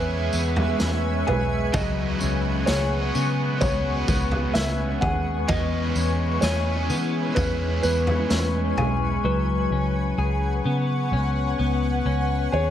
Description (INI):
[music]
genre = dream pop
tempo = 64 BPM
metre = 4/4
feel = straight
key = unclear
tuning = A4 = 439 Hz
[part]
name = felt-muted upright piano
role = melody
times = 0.0-12.7 s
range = B4 to F#5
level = -30 LUFS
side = right 1 dB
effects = digital delay
[part]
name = crunchy overdriven guitar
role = accompaniment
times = 0.0-9.8 s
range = C#3 to B4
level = -30 LUFS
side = right 3 dB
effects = tremolo, wide subtle chorus
[part]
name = shimmering ambient pad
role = sustained chords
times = 0.0-12.7 s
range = E4 to C#6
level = -30 LUFS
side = left 1 dB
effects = chorus, built-in reverb
[part]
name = clean electric guitar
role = arpeggios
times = 0.0-12.7 s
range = F#3 to G#4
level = -28 LUFS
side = left 5 dB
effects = analog chorus, digital delay
[part]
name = vintage muted picked electric bass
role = bass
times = 0.0-12.7 s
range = B1 to E3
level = -25 LUFS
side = equal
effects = none
[part]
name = raw garage drum kit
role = drums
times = 0.3-9.0 s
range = kick drum, snare drum, tambourine, toms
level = -28 LUFS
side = equal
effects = none
[sound]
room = light reverb, small room ambience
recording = none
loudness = -21 LUFS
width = side -10 dB against mid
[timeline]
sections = 0.0-12.7 A section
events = none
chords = 0.0 E6; 1.7 C#7sus4; 5.5 E6; 9.2 C#7sus4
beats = 0.80 | 1.74 2.68 3.62 4.55 | 5.49 6.43 7.37 8.30 | 9.24 10.18 11.12 12.05